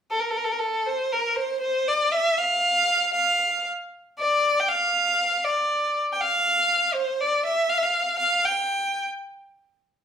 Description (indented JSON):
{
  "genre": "mexican folk",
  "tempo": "79 BPM (dotted quarters)",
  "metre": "6/8",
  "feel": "straight",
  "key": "F major",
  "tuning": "A4 = 442 Hz",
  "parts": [
    { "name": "rich violin", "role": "solo", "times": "0.1-9.0 s", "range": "A4 to G5", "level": "-21 LUFS", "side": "equal", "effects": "none" }
  ],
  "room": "wet large studio reverb, RT60 0.8 s",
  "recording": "band playing live in one room",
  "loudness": "-21 LUFS",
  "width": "side -8 dB against mid",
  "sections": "0.9-10.0 A section",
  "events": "none",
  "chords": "none"
}